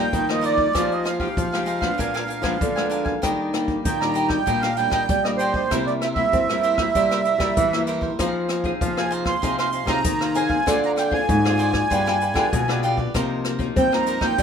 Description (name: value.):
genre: samba and choro.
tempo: 97 BPM.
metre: 4/4.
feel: straight.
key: C minor.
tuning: A4 = 441 Hz.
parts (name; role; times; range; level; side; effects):
accordion; melody; 0.0-14.4 s; C5 to C6; -23 LUFS; right 4 dB; light tremolo tuning.
cavaquinho; accompaniment; 0.0-14.4 s; D4 to Ab5; -28 LUFS; equal; none.
nylon-string guitar; accompaniment; 0.0-14.4 s; G2 to Ab4; -28 LUFS; left 3 dB; none.
nylon-string guitar; bass; 0.0-14.4 s; G2 to C4; -25 LUFS; equal; none.
jazz brush drum kit; drums; 0.1-14.4 s; hi-hat, kick drum, rim click; -27 LUFS; left 2 dB; none.
room: moderate studio reverb, RT60 0.8 s.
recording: minimal, uncompressed stereo recording.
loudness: -19 LUFS.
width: side -7 dB against mid.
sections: 0.0-14.4 A section.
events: none.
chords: 0.0 Cm7; 0.8 Fm9; 2.0 Bb7b9; 3.2 Ebmaj7; 5.7 C7; 8.2 Fm7; 10.7 Dm7b5; 11.9 G7b9; 13.2 Cm7.